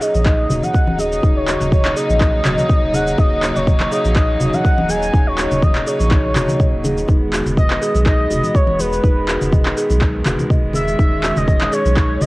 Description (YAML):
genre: afro house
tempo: 123 BPM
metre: 4/4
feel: swing 53% on 16ths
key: Eb phrygian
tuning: A4 = 440 Hz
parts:
  - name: expressive portamento lead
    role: melody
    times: 0.0-12.3 s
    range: B4 to Ab5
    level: -21 LUFS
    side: equal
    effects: analog chorus, cassette tape, tape echo
  - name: rich chamber string section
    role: sustained chords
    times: 0.0-12.3 s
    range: Db3 to Eb4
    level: -23 LUFS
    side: equal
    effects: sidechain pumping, cassette tape
  - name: buzzing kalimba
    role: arpeggios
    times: 0.0-12.3 s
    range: Eb4 to Eb5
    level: -24 LUFS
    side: equal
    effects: sidechain pumping, low-pass filter, cassette tape, tape echo
  - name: afro-pop drum kit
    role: drums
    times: 0.0-12.3 s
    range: cabasa, handclaps, toms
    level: -23 LUFS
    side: equal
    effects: cassette tape
  - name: round analog bass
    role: bass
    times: 0.1-12.3 s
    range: Eb1 to B1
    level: -22 LUFS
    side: equal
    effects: sidechain pumping
  - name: congas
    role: percussion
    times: 0.1-12.3 s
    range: none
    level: -23 LUFS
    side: left 1 dB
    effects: none
  - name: electronic kick drum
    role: drums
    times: 0.3-12.1 s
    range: none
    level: -15 LUFS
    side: equal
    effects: cassette tape
room: light reverb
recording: home recording on cassette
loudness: -14 LUFS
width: side -20 dB against mid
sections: 0.0-12.3 A section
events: filter sweep on kalimba 0.0-12.3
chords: 0.0 Ebm7; 7.1 Emaj7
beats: 0.26 0.75 | 1.23 1.72 2.21 2.70 | 3.19 3.67 4.16 4.65 | 5.14 5.62 6.11 6.60 | 7.09 7.58 8.06 8.55 | 9.04 9.53 10.01 10.50 | 10.99 11.48 11.96